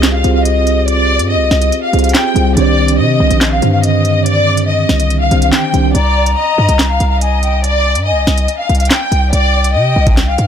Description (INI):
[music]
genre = hip hop, drill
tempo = 142 BPM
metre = 4/4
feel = half-time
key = C minor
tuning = A4 = 441 Hz
[part]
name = warm studio violin section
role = melody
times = 0.0-10.5 s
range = D5 to G5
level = -15 LUFS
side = left 1 dB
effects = none
[part]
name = mellow tine electric piano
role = accompaniment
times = 0.0-6.0 s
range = D3 to C5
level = -16 LUFS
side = right 2 dB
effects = medium stereo tremolo
[part]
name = hard-hitting 808-style bass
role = bass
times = 0.0-10.5 s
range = Bb1 to C3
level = -13 LUFS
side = equal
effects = none
[part]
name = drill drum kit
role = drums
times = 0.0-10.5 s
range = handclaps, hi-hat, kick drum, snare drum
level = -16 LUFS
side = right 1 dB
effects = none
[part]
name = breathy hollow jazz flute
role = second line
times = 5.9-10.5 s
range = G5 to Bb5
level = -20 LUFS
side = left 5 dB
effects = digital delay
[sound]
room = little or no reverb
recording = dark, warm production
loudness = -10 LUFS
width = side -8 dB against mid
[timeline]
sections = 0.0-10.5 A section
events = none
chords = 0.0 Fmadd9/C; 2.6 Cmadd9